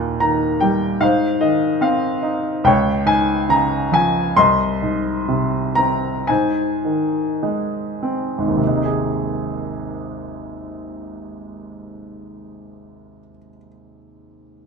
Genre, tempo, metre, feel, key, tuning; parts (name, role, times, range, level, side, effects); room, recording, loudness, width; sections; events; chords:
classical, lyrical solo piano; 51-76 BPM; 4/4; rubato; Ab major; A4 = 441 Hz
warm baby grand piano; solo; 0.0-14.7 s; Ab1 to C6; -17 LUFS; equal
moderate recital hall reverb, RT60 1.5 s; minimal, uncompressed stereo recording; -16 LUFS; side -5 dB against mid
0.0-8.6 A section; 8.6-13.2 B section
slowing down 1.0-8.6
0.0 Eb; 1.0 Ab; 2.6 Db; 4.4 Ab/C; 6.3 Ab